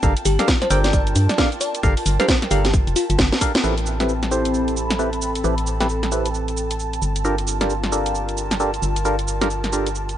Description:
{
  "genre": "UK garage, two-step garage",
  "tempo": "133 BPM",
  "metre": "4/4",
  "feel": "swing 61% on 16ths",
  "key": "A phrygian",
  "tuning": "A4 = 440 Hz",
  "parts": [
    { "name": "ethereal airy pad", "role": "sustained chords", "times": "0.0-10.2 s", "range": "A5", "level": "-33 LUFS", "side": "right 5 dB", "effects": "ensemble chorus, built-in reverb, sidechain pumping" },
    { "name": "percussive organ stab", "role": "stabs", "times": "0.0-9.9 s", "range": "C4 to G5", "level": "-24 LUFS", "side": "equal", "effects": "chorus, phaser, dub echo" },
    { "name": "organ-like FM bass", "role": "bass", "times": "0.0-10.2 s", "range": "F1 to G2", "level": "-23 LUFS", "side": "equal", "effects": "sidechain pumping" },
    { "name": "electronic kick drum", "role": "drums", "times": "0.0-3.5 s", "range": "none", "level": "-20 LUFS", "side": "equal", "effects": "none" },
    { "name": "garage drum kit", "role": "drums", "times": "0.0-10.2 s", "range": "cabasa, hi-hat, snare drum", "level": "-23 LUFS", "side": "equal", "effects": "none" },
    { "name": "airy breathy pad", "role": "texture", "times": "0.0-10.2 s", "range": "C4 to B5", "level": "-29 LUFS", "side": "equal", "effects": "chorus, sidechain pumping" },
    { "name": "bell-like FM electric piano", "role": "melody", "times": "0.3-3.2 s", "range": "F4 to D5", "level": "-25 LUFS", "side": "equal", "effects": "chorus, phaser, dub echo" }
  ],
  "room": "light reverb",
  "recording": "nothing above 10.4 kHz",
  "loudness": "-18 LUFS",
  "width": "side -11 dB against mid",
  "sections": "0.0-3.6 A section; 3.6-10.2 B section",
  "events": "drum fill 3.3-3.6; band accent 3.5; filter sweep on synth stab 3.6-10.2",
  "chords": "0.0 Gm9; 3.6 Am9; 7.0 Gm9"
}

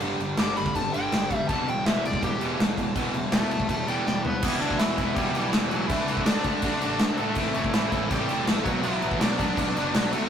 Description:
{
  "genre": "punk rock",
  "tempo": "163 BPM",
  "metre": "4/4",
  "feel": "straight",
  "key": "E minor",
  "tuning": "A4 = 440 Hz",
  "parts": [
    { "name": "crunchy overdriven guitar", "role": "riff", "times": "0.0-10.3 s", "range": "E2 to D4", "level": "-32 LUFS", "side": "right 7 dB", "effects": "none" },
    { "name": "distorted electric guitar", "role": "riff", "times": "0.0-10.3 s", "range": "G2 to F#4", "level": "-32 LUFS", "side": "left 5 dB", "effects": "distortion" },
    { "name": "tight distorted guitar", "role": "riff", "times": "0.0-10.3 s", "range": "E2 to D4", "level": "-33 LUFS", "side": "equal", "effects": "distortion" },
    { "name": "fuzz picked electric bass", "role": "bass", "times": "0.0-10.3 s", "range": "E1 to A2", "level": "-35 LUFS", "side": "equal", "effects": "overdrive" },
    { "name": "big rock drum kit", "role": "drums", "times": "0.0-10.2 s", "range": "crash cymbal, kick drum, snare drum, toms", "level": "-26 LUFS", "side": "equal", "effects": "none" },
    { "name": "smooth overdriven lead guitar", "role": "melody", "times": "0.4-10.3 s", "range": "E3 to D6", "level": "-29 LUFS", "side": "left 1 dB", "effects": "none" }
  ],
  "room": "moderate studio ambience, RT60 0.5 s",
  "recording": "rough rehearsal-room recording, tube saturation",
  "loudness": "-23 LUFS",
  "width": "side -8 dB against mid",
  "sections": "0.0-4.4 A section; 4.4-10.3 B section",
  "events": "lead electric guitar solo 0.0-4.4; drum fill 4.1-4.4",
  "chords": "0.0 G5; 1.5 Em; 5.9 D; 7.4 Am; 8.7 Bm"
}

